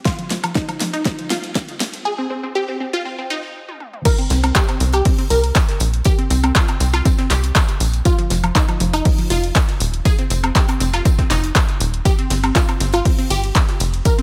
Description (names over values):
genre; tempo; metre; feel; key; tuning
progressive house; 120 BPM; 4/4; straight; C minor; A4 = 440 Hz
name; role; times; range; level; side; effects
unison pluck; arpeggios; 0.1-14.2 s; F3 to Bb4; -25 LUFS; equal; sidechain pumping, dub echo
deep house drum kit; drums; 0.1-14.2 s; crash cymbal, handclaps, hi-hat, ride cymbal, snare drum, toms, woodblock; -25 LUFS; equal; overdrive, small room ambience, sidechain pumping on hats, sidechain pumping on perc, sidechain pumping on toms, sidechain pumping on cymbals
electronic kick drum; drums; 0.1-14.2 s; none; -19 LUFS; equal; overdrive, small room ambience
tight sequencer bass; bass; 0.3-14.0 s; Eb1 to C2; -21 LUFS; equal; sidechain pumping, high-pass filter
modern studio drum kit; drums; 4.1-14.2 s; hi-hat, snare drum, tambourine; -34 LUFS; equal; sidechain pumping on hats, high-pass filter on hats, small room ambience, high-pass filter on snare, sidechain pumping on perc, high-pass filter on perc, high-pass filter on room
room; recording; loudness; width
light reverb, small room ambience; high-pass filter; -18 LUFS; mono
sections
0.0-4.1 A section; 4.1-14.2 B section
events
build-up 0.0-4.1; drum fill 0.0-2.1, 3.7-4.1; filter sweep on synth pluck 0.0-4.1; filter sweep 0.0-4.1; drop 4.1-14.2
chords
0.1 F5; 4.1 C5; 8.1 F5; 12.1 C5